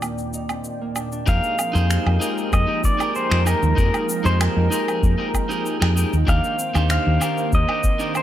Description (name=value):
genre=sunset chillout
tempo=96 BPM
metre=4/4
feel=straight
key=unclear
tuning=A4 = 440 Hz
part: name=electric guitar at the edge of break-up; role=accompaniment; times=0.0-8.2 s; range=Eb3 to C5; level=-28 LUFS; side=moving between left 4 dB and right 2 dB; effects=auto-pan, digital delay
part: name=lush unison pad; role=sustained chords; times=0.0-8.2 s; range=Eb2 to G5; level=-28 LUFS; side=right 1 dB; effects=chorus, phaser
part: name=Celtic harp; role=arpeggios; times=0.0-8.2 s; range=Bb3 to Eb4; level=-32 LUFS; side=right 2 dB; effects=digital delay
part: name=electronic woodblock, cabasa and finger snaps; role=drums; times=0.0-8.2 s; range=none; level=-28 LUFS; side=right 1 dB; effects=overdrive
part: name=pedal steel guitar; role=melody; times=1.3-8.2 s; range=Bb4 to F5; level=-24 LUFS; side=equal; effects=digital delay
part: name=fingered electric bass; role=bass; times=1.3-7.6 s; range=Eb2 to F2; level=-19 LUFS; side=equal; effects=none
part: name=electronic kick drum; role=drums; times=1.3-8.0 s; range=none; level=-20 LUFS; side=equal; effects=overdrive
room=light reverb, digital ambience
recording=none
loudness=-18 LUFS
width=side -12 dB against mid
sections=0.0-1.3 A section; 1.3-8.2 B section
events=filter sweep on harp 0.0-1.3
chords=0.0 Cm9/Eb; 1.3 Fm11; 6.3 Cm9/Eb